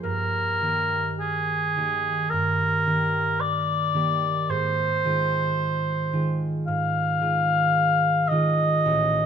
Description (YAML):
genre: classical, romantic duo for oboe and harp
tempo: 55 BPM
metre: 4/4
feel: rubato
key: unclear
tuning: A4 = 441 Hz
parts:
  - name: warm oboe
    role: melody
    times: 0.0-9.3 s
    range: Ab4 to F5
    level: -23 LUFS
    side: left 1 dB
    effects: none
  - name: concert harp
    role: accompaniment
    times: 0.0-9.3 s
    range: A1 to G4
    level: -26 LUFS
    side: right 2 dB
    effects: none
room: moderate recital hall reverb, RT60 1.8 s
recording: close, detailed microphones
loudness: -21 LUFS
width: side -7 dB against mid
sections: 0.0-9.3 A section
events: none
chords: 0.0 Eb/G; 4.5 Fm7/Ab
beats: | 0.05 1.19 2.31 3.40 | 4.50 5.58 6.66 7.75 | 8.85